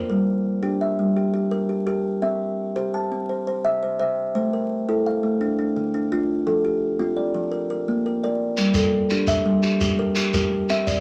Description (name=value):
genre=southern african traditional, mbira-style interlocking cycle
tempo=113 BPM (dotted quarters)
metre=12/8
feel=straight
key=G dorian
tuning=A4 = 440 Hz
part: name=kalimba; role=arpeggios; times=0.0-11.0 s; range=D3 to A5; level=-23 LUFS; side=equal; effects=none
part: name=shekere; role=percussion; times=8.6-11.0 s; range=none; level=-28 LUFS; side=equal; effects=none
room=wet studio ambience, RT60 0.5 s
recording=vinyl crackle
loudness=-23 LUFS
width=mono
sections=0.1-11.0 A section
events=none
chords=0.1 Gm; 2.2 C; 4.3 Am; 5.4 Dm; 6.5 F; 7.5 Bb; 8.6 Gm